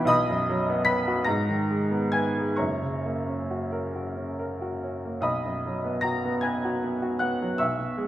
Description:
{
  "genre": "classical, romantic nocturne for solo piano",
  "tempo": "44-54 BPM (dotted quarters)",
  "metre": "6/8",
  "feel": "rubato",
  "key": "B major",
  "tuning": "A4 = 438 Hz",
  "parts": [
    { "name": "clear upright piano", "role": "solo", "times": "0.0-8.1 s", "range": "F#1 to B6", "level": "-24 LUFS", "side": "equal", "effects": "none" }
  ],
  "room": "wet recital hall reverb, RT60 1.4 s",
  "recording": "none",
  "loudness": "-24 LUFS",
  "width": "side -13 dB against mid",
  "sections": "0.0-8.1 A section",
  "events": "none",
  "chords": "0.1 B; 1.3 G#m; 2.6 F#; 5.2 B",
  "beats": "| 0.11 1.27 | 2.59 3.94 | 5.24 6.43 | 7.58"
}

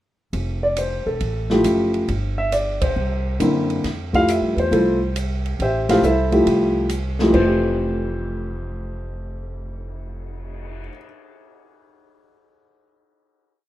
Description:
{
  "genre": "jazz piano trio",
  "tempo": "137 BPM",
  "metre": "4/4",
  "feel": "swing 67% on 8ths",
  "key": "F major",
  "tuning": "A4 = 440 Hz",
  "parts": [
    { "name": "upright bass", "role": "bass", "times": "0.3-10.9 s", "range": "E1 to G2", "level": "-25 LUFS", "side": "equal", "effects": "none" },
    { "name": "open jazz drum kit", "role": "drums", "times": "0.3-10.7 s", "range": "crash cymbal, cymbal swell, hi-hat, kick drum, ride cymbal, snare drum", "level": "-30 LUFS", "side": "right 1 dB", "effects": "none" },
    { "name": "warm upright piano", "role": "melody", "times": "0.6-11.1 s", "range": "F2 to G5", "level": "-18 LUFS", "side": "equal", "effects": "none" }
  ],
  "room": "wet small room ambience, RT60 0.5 s",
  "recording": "rough home demo mix",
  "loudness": "-18 LUFS",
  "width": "side -14 dB against mid",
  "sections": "0.3-7.3 A section; 7.3-10.8 final chord",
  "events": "band accent 2.7",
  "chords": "0.3 Fmaj9; 2.1 Csus2/G (rootless); 3.0 C9; 3.8 Fmaj9",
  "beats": "| 0.33 0.77 1.20 1.64 | 2.08 2.52 2.96 3.40 | 3.84 4.28 4.71 5.15 | 5.59 6.03 6.46 6.90 | 7.33 7.77 8.21 8.64 | 9.07 9.51 9.94 10.37"
}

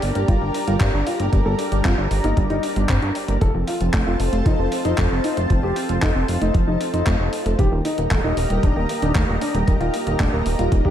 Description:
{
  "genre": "italo disco",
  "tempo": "115 BPM",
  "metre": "4/4",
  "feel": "straight",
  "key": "unclear",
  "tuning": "A4 = 440 Hz",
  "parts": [
    { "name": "dark grand piano", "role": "melody", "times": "0.0-10.9 s", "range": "Bb3 to A4", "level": "-25 LUFS", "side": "left 1 dB", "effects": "tape echo" },
    { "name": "lush unison pad", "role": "sustained chords", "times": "0.0-10.9 s", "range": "F4 to Bb5", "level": "-27 LUFS", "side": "equal", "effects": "chorus, phaser" },
    { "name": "chorused synth bass", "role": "bass", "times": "0.0-10.9 s", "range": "Eb1 to G2", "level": "-22 LUFS", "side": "equal", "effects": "tube saturation" },
    { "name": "gated 80s digital drum machine", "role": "drums", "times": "0.0-10.8 s", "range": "handclaps, hi-hat", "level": "-29 LUFS", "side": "equal", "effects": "gated reverb" },
    { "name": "analog pluck", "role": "arpeggios", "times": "0.2-10.9 s", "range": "Eb3 to D4", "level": "-27 LUFS", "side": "right 2 dB", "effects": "chorus, ping-pong delay" },
    { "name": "electronic kick drum", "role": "drums", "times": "0.3-10.9 s", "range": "none", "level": "-19 LUFS", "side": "equal", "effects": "none" },
    { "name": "swell", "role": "sound effects", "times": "10.8-10.9 s", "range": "none", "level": "-28 LUFS", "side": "right 5 dB", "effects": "none" }
  ],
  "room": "light reverb",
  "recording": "none",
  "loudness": "-18 LUFS",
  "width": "side -10 dB against mid",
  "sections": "0.0-10.9 A section",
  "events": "swell 10.8",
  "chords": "0.0 Gm; 3.4 F; 7.6 Eb",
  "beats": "0.28 0.81 | 1.33 1.85 2.37 2.89 | 3.42 3.94 4.46 4.98 | 5.50 6.02 6.54 7.07 | 7.59 8.11 8.63 9.15 | 9.68 10.20 10.72"
}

